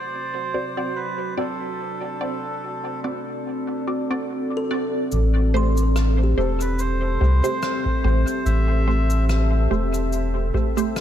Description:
ambient dub; 72 BPM; 4/4; swing 55% on 16ths; A dorian; A4 = 441 Hz
melodica; melody; 0.0-9.3 s; A4 to E5; -30 LUFS; right 1 dB; dub echo
deep dark ambient pad; sustained chords; 0.1-11.0 s; C4 to E5; -27 LUFS; equal; chorus, built-in reverb
filtered dub chord stab; stabs; 0.5-10.9 s; A3 to D5; -28 LUFS; right 2 dB; phaser, cassette tape, dub echo
kalimba; arpeggios; 4.6-10.1 s; G4 to C6; -33 LUFS; left 2 dB; dub echo
soft dub sub bass; bass; 5.1-10.5 s; E1 to C2; -19 LUFS; equal
cabasa and rim click; drums; 5.1-11.0 s; -34 LUFS; left 2 dB; dub echo
electronic kick drum; drums; 5.1-10.7 s; -26 LUFS; equal
light reverb, small room ambience; -20 LUFS; side -10 dB against mid
0.0-5.1 A section; 5.1-11.0 B section
filter sweep on ambient pad 0.0-5.1; filter sweep on synth stab 0.0-5.1
0.0 D7; 5.1 Am7

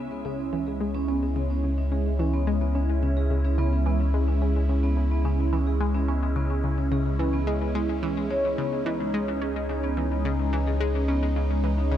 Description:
ambient, sequencer-driven space music; 108 BPM; 4/4; straight; C# minor; A4 = 439 Hz
phased analog pad; sustained chords; 0.0-12.0 s; G#3 to E4; -31 LUFS; equal; phaser, chorus
analog pluck; riff; 0.0-12.0 s; C#3 to C#4; -31 LUFS; left 2 dB; chorus, phaser, ping-pong delay
warm sub bass; bass; 0.0-12.0 s; C#2; -25 LUFS; equal
vibraphone with soft mallets; arpeggios; 0.1-12.0 s; G#3 to C#5; -30 LUFS; moving between equal and right 7 dB; auto-pan, ping-pong delay
light reverb; -23 LUFS; side -11 dB against mid
0.0-12.0 A section
0.0 C#m

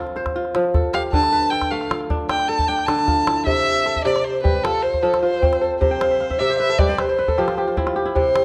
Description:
west african traditional, West African string and xylophone music; 102 BPM (dotted quarters); 12/8; straight; F lydian; A4 = 444 Hz
kora; arpeggios; 0.0-8.4 s; C3 to G5; -23 LUFS; equal
calabash; percussion; 0.1-8.4 s; -27 LUFS; equal
warm violin; melody; 0.9-8.4 s; A4 to A5; -23 LUFS; equal
moderate recital hall reverb, RT60 1.5 s; dark, warm production; -20 LUFS; mono
0.0-3.5 A section; 3.5-8.4 B section
violin solo 0.0-3.5; kora fill 5.9-8.2
0.0 F; 1.1 Dm; 3.5 C; 4.6 F; 5.8 C5; 7.0 F5

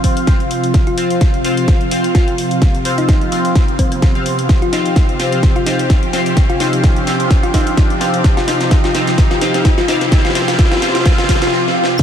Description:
bass house; 128 BPM; 4/4; swing 55% on 16ths; A4 = 441 Hz
sweeping resonant pad; sustained chords; 0.0-12.0 s; C3 to G4; -20 LUFS; equal; chorus, sidechain pumping
band-passed chord stab; stabs; 0.0-11.5 s; C4 to F5; -21 LUFS; left 1 dB; phaser, ensemble chorus, sidechain pumping, ping-pong delay
big-room dance drum kit; drums; 0.0-12.0 s; crash cymbal, hi-hat, snare drum; -22 LUFS; equal; high-pass filter on snare, small room ambience, high-pass filter on hats, high-pass filter on cymbals
electronic kick drum; drums; 0.0-12.0 s; -12 LUFS; equal; small room ambience
riser, swell and impact; sound effects; 0.4-12.0 s; -24 LUFS; right 1 dB
warbly tape-like pad; texture; 0.0-12.0 s; C4 to C6; -25 LUFS; left 1 dB; chorus, built-in reverb, phaser, sidechain pumping
thumb-piano-like synth pluck; melody; 0.9-11.5 s; C4 to F4; -21 LUFS; left 1 dB; chorus, ping-pong delay
wobble bass; bass; 12.0 s; F1; -21 LUFS; equal; chorus, tube saturation, sidechain pumping
light reverb, digital ambience; -11 LUFS; side -9 dB against mid
0.0-12.0 A section
build-up 0.0-12.0; drum fill 0.0-11.5, 11.5-12.0; riser 0.4-11.5; swell 11.1-12.0
0.0 F5

